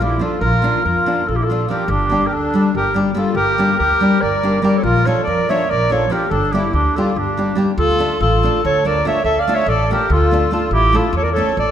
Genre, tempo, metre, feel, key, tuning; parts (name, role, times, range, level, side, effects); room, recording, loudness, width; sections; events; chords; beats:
balkan folk, Balkan wedding band; 286 BPM (eighths); 7/8; straight; G dorian sharp4; A4 = 439 Hz
warm clarinet; melody; 0.0-11.7 s; G4 to F5; -18 LUFS; right 1 dB
accordion; second line; 0.0-11.7 s; D4 to D5; -22 LUFS; left 2 dB; light tremolo tuning
nylon-string guitar; accompaniment; 0.0-11.5 s; F3 to A4; -21 LUFS; left 1 dB
upright bass; bass; 0.0-11.7 s; G1 to F2; -21 LUFS; equal
moderate concert hall reverb, RT60 1.8 s; minimal, uncompressed stereo recording; -14 LUFS; side -9 dB against mid
0.0-7.8 A section; 7.8-11.7 B section
0.0 Bb; 1.9 Gm; 4.8 Bb; 6.3 Gm; 7.8 Dm; 10.7 A
0.00 0.21 | 0.42 0.63 0.84 1.05 1.26 1.47 1.68 | 1.89 2.10 2.31 2.52 2.73 2.94 3.15 | 3.36 3.57 3.78 3.99 4.20 4.41 4.62 | 4.83 5.04 5.25 5.46 5.67 5.88 6.09 | 6.30 6.51 6.72 6.93 7.14 7.35 7.56 | 7.77 7.98 8.19 8.40 8.61 8.82 9.03 | 9.24 9.45 9.66 9.87 10.08 10.29 10.50 | 10.71 10.92 11.13 11.34 11.55